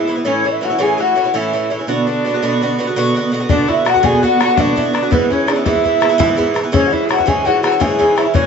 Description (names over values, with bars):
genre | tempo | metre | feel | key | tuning
celtic folk, Celtic slip jig | 111 BPM (dotted quarters) | 9/8 | straight | B dorian | A4 = 439 Hz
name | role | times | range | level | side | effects
mellow baroque flute | melody | 0.0-8.5 s | B4 to G#5 | -17 LUFS | equal | none
open-back banjo | second line | 0.0-8.5 s | B3 to G#4 | -24 LUFS | right 2 dB | none
rich viola | second line | 0.0-8.5 s | B3 to G#4 | -22 LUFS | left 4 dB | none
Irish bouzouki | accompaniment | 0.0-8.5 s | G#2 to F#4 | -17 LUFS | right 2 dB | none
bodhran | percussion | 3.5-8.4 s | none | -19 LUFS | left 4 dB | none
room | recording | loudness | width
wet small room reverb, RT60 0.5 s | nothing above 7.8 kHz | -13 LUFS | side -6 dB against mid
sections
0.0-3.5 A section; 3.5-8.5 A section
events
none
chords
0.3 A; 1.9 Bm; 5.1 E; 6.7 C#m